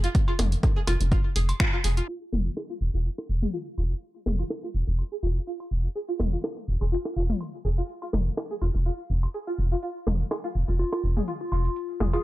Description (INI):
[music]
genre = minimal techno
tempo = 124 BPM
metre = 4/4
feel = swing 54% on 16ths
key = F minor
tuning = A4 = 440 Hz
[part]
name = string-like resonator pluck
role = riff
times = 0.0-12.2 s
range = F4 to Ab4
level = -34 LUFS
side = equal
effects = lush chorus, sidechain pumping, ping-pong delay
[part]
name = rubbery square bass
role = bass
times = 0.0-12.2 s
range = F1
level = -25 LUFS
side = equal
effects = sidechain pumping
[part]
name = punchy analog drum machine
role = drums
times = 0.0-12.2 s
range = finger snaps, hi-hat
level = -31 LUFS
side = right 1 dB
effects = low-pass filter on hats, low-pass filter on snare, low-pass filter on room
[part]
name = electronic kick drum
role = drums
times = 0.1-1.7 s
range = none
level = -23 LUFS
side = equal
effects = none
[part]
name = electronic cowbell, toms and bongos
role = percussion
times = 0.3-12.2 s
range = none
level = -32 LUFS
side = left 2 dB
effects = ping-pong delay
[part]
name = soft struck synth lead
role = melody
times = 10.8-12.2 s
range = F4 to Ab4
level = -31 LUFS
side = left 2 dB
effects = chorus
[sound]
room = digital ambience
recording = dark, warm production, low-pass filter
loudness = -25 LUFS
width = side -17 dB against mid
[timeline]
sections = 0.0-2.1 A section; 2.1-12.2 B section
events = band accent 1.6; filter sweep on synth pluck 2.1-12.2; filter sweep 2.1-12.2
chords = none